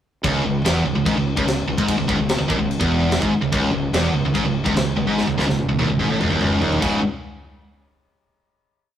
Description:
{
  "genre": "heavy metal",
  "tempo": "146 BPM",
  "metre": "4/4",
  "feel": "straight",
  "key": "C# minor",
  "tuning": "A4 = 440 Hz",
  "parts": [
    { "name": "high-gain distorted guitar", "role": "riff", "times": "0.2-7.0 s", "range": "C#2 to C#3", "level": "-19 LUFS", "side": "equal", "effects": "distortion" },
    { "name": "fuzz fingered electric bass", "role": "bass", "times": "0.2-7.0 s", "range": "C#1 to A1", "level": "-26 LUFS", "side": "equal", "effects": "overdrive" },
    { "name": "tight metal drum kit", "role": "drums", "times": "0.2-6.9 s", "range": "crash cymbal, kick drum, snare drum, toms", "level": "-25 LUFS", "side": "equal", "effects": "none" }
  ],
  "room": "moderate stone room reverb, RT60 1.4 s",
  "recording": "rough rehearsal-room recording",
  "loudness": "-17 LUFS",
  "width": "side -10 dB against mid",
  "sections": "0.2-6.8 riff; 6.8-8.5 final chord",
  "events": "drum fill 5.2-6.8",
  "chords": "0.2 C#m; 6.8 C#5"
}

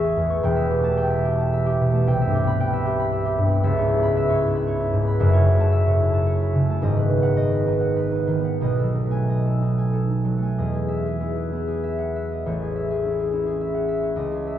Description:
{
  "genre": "classical, solo harp piece",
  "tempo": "86-117 BPM",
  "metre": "3/4",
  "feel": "rubato",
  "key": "E major",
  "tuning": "A4 = 438 Hz",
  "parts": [
    { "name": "concert harp", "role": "solo", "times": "0.0-14.6 s", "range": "E1 to C#6", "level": "-19 LUFS", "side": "equal", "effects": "none" }
  ],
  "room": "wet cathedral reverb, RT60 5.2 s",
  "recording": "dark, warm production",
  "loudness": "-19 LUFS",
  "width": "side -11 dB against mid",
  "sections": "0.0-10.6 A section; 10.6-14.6 B section",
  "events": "none",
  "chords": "0.4 Emadd11; 2.1 Cmaj7; 3.6 C#m7; 5.2 F#m7; 6.8 G#m7; 8.6 B6; 10.6 Emaj7; 12.5 Amaj7"
}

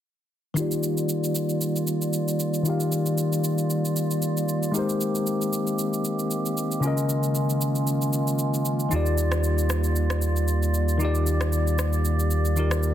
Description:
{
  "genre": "amapiano",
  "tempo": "115 BPM",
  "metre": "4/4",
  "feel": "swing 55% on 16ths",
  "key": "Eb major",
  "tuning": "A4 = 443 Hz",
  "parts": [
    { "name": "bell-like tine electric piano", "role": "accompaniment", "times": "0.5-12.9 s", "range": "Db3 to F5", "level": "-26 LUFS", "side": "left 3 dB", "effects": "low-pass filter" },
    { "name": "pipe organ, stopped flute", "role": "sustained chords", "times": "0.6-12.9 s", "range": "Eb3 to D5", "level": "-28 LUFS", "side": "right 3 dB", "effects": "low-pass filter" },
    { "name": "electronic shaker and rim click", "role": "drums", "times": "0.6-12.9 s", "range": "none", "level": "-32 LUFS", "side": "right 1 dB", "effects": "none" },
    { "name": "saturated sub bass", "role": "bass", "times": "8.9-12.9 s", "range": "Eb2", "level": "-23 LUFS", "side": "right 1 dB", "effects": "none" }
  ],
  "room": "light reverb",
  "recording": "dense, heavily limited modern master",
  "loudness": "-22 LUFS",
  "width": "side -11 dB against mid",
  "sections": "0.6-12.9 A section",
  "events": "filter sweep 0.6-12.9",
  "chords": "0.6 Ebmaj9; 4.7 Abmaj9; 6.8 Db69; 8.9 Ebmaj9"
}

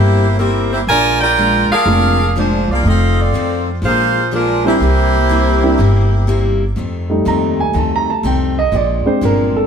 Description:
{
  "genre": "jazz",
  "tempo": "122 BPM",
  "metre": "4/4",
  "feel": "swing 68% on 8ths",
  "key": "unclear",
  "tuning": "A4 = 440 Hz",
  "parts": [
    { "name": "edgy saxophone section", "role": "melody", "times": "0.0-6.6 s", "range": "G3 to Ab5", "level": "-15 LUFS", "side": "right 1 dB", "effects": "none" },
    { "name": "picked steel-string acoustic guitar", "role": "accompaniment", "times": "0.0-9.6 s", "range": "F2 to E4", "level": "-21 LUFS", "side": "left 2 dB", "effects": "none" },
    { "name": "upright bass", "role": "bass", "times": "0.0-9.7 s", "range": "F1 to F2", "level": "-16 LUFS", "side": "equal", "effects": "none" },
    { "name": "warm concert grand piano", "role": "accompaniment", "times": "1.9-9.7 s", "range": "G3 to Bb5", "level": "-16 LUFS", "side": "right 2 dB", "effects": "none" }
  ],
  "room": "moderate echo chamber reverb, RT60 1.4 s",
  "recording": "heard from further back in the room",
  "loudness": "-12 LUFS",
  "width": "side -7 dB against mid",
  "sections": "0.0-6.8 A section; 6.8-9.7 B section",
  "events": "grand piano solo 6.8-9.7",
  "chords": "0.0 C7; 0.9 Bb7; 2.8 F7; 3.8 Bb7; 4.8 C7; 6.8 F7; 8.7 Bb7"
}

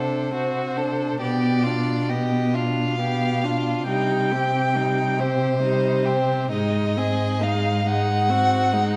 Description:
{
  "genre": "classical, slow romantic movement for string quartet",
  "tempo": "45 BPM (dotted quarters)",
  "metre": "6/8",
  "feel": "rubato",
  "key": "C minor",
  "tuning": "A4 = 440 Hz",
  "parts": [
    { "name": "warm violin", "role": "melody", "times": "0.0-9.0 s", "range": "C5 to G5", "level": "-27 LUFS", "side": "equal", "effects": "none" },
    { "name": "rich violin", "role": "second line", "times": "0.0-9.0 s", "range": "Eb4 to A4", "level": "-31 LUFS", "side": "equal", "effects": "none" },
    { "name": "warm viola", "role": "accompaniment", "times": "0.0-9.0 s", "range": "G3 to D4", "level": "-28 LUFS", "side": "equal", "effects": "none" },
    { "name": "rich cello", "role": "bass", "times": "0.0-9.0 s", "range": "Ab2 to C3", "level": "-28 LUFS", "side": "equal", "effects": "none" }
  ],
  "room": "wet recital hall reverb, RT60 1.7 s",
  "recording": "none",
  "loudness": "-22 LUFS",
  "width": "mono",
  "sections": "0.0-9.0 A section",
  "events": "none",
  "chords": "0.0 D7/C; 1.2 G7/B; 3.9 Cm; 6.5 Ab"
}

